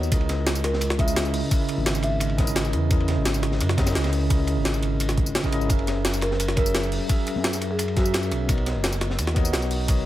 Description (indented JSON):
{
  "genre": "liquid drum and bass",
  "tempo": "172 BPM",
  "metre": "4/4",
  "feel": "straight",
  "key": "C# dorian",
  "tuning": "A4 = 444 Hz",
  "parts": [
    { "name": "tine electric piano", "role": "accompaniment", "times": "0.0-10.1 s", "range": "C#3 to E5", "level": "-28 LUFS", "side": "equal", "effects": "medium stereo tremolo, dub echo" },
    { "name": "smooth gliding synth bass", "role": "bass", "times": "0.0-10.1 s", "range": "F#1 to F#2", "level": "-26 LUFS", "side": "equal", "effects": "none" },
    { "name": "jungle sampler-style drum kit", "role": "drums", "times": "0.0-10.0 s", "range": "hi-hat, snare drum, tambourine", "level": "-28 LUFS", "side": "equal", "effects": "none" },
    { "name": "crunchy breakbeat drum kit", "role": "drums", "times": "0.1-10.0 s", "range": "hi-hat, ride cymbal, snare drum", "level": "-33 LUFS", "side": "equal", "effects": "high-pass filter on cymbals, high-pass filter on hats, high-pass filter on snare, high-pass filter on room" },
    { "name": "electronic kick drum", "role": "drums", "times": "0.1-10.0 s", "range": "none", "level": "-23 LUFS", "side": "equal", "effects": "overdrive" },
    { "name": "marimba with medium mallets", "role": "melody", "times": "0.6-2.4, 6.2-8.5 s", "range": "F#4 to E5", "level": "-31 LUFS", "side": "right 1 dB", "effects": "dub echo" }
  ],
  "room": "light reverb, studio reverb",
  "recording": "none",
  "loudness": "-21 LUFS",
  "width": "side -14 dB against mid",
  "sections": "0.0-10.1 A section",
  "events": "none",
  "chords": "0.1 C#m69; 5.7 F#9; 8.5 Bmaj7"
}